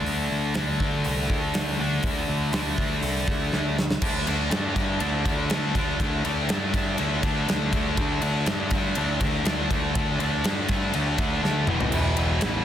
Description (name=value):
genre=quiet-loud alternative rock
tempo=121 BPM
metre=4/4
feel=straight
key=unclear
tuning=A4 = 435 Hz
part: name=tight distorted guitar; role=riff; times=0.0-12.6 s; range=E2 to D4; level=-26 LUFS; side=left 1 dB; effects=distortion
part: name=growling picked electric bass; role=bass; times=0.0-12.6 s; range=E1 to G2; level=-28 LUFS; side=equal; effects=overdrive
part: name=huge arena drum kit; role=drums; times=0.1-12.5 s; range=crash cymbal, hi-hat, kick drum, ride cymbal, snare drum, toms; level=-27 LUFS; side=equal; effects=none
room=little or no reverb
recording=dense, heavily limited modern master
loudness=-22 LUFS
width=side -10 dB against mid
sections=0.0-4.0 A section; 4.0-12.6 B section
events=drum fill 3.5-4.0, 11.4-11.9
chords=0.0 D5; 11.7 E5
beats=| 0.07 0.56 1.06 1.55 | 2.04 2.54 3.03 3.53 | 4.02 4.52 5.01 5.50 | 6.00 6.49 6.99 7.48 | 7.98 8.47 8.96 9.46 | 9.95 10.45 10.94 11.44 | 11.93 12.43